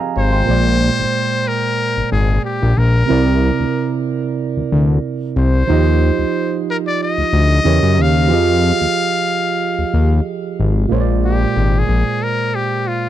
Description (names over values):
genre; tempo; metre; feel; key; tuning
R&B, neo-soul; 92 BPM; 4/4; swing 53% on 16ths; unclear; A4 = 440 Hz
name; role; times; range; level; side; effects
barky tine electric piano; accompaniment; 0.0-13.1 s; Bb2 to C6; -19 LUFS; right 8 dB; overdrive, wide subtle chorus
trumpet with metal mute; melody; 0.2-13.1 s; F4 to F5; -20 LUFS; left 4 dB; none
fat analog bass; bass; 0.2-12.0 s; Ab1 to Gb2; -14 LUFS; left 1 dB; none
room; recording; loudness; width
little or no reverb; dry, close 1970s-style studio recording; -14 LUFS; side -12 dB against mid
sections
0.5-10.9 A section; 10.9-13.1 B section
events
muted trumpet solo 10.9-13.1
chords
0.5 Bb9; 3.1 C9; 5.7 Ebmaj9; 7.6 Edim7; 8.3 Fm9; 10.9 Bb9